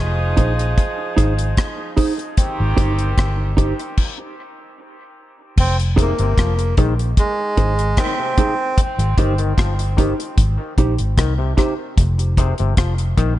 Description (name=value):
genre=dub reggae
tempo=75 BPM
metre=4/4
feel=straight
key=F minor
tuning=A4 = 440 Hz
part: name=warm horn section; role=second line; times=0.0-3.6 s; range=Eb3 to Ab4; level=-26 LUFS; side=right 2 dB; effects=dub echo
part: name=vintage muted fingered electric bass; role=bass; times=0.0-13.4 s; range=F1 to C2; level=-18 LUFS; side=equal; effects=none
part: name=mellow electric guitar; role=accompaniment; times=0.4-13.3 s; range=Eb4 to C5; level=-25 LUFS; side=right 3 dB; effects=lush chorus, high-pass filter, dub echo
part: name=deep reggae drum kit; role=drums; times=0.4-13.4 s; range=crash cymbal, hi-hat, kick drum, rim click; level=-17 LUFS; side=equal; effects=none
part: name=melodica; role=melody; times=5.6-8.8 s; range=Ab3 to C4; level=-24 LUFS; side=right 1 dB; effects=dub echo
part: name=auto-wah clav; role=arpeggios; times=6.0-13.3 s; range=C3 to F3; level=-28 LUFS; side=left 8 dB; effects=overdrive, dub echo
room=small room ambience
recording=nothing above 10.5 kHz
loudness=-16 LUFS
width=side -15 dB against mid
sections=0.0-5.6 A section; 5.6-13.4 B section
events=break 0.0-5.6; stop 4.0-5.6; filter sweep on clean electric guitar 8.8-13.4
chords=0.0 Fm7; 2.4 Abmaj7 (rootless); 5.6 Fm7; 8.8 Abmaj7; 12.0 Fm7